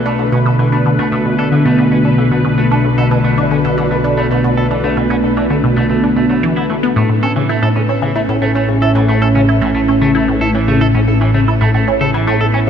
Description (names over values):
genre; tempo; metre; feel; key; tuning
ambient, sequencer-driven space music; 113 BPM; 4/4; straight; unclear; A4 = 440 Hz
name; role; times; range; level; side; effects
phased analog pad; sustained chords; 0.0-12.7 s; A2 to B4; -14 LUFS; equal; phaser, chorus
semi-hollow electric guitar; arpeggios; 0.0-12.6 s; E3 to A4; -21 LUFS; right 1 dB; auto-pan, tape echo, shimmer reverb
analog drone; bass; 0.0-12.7 s; A1 to B1; -26 LUFS; equal; chorus
resonant blip pluck; riff; 0.1-12.7 s; A2 to E4; -16 LUFS; right 1 dB; phaser, tape echo
room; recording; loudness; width
wet huge ambient reverb, RT60 8.3 s; none; -11 LUFS; side -8 dB against mid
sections
0.0-12.7 A section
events
fade-in on clean electric guitar 0.0-12.7; fade-in on synth drone 0.0-12.7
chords
0.0 Bm7; 7.0 Aadd9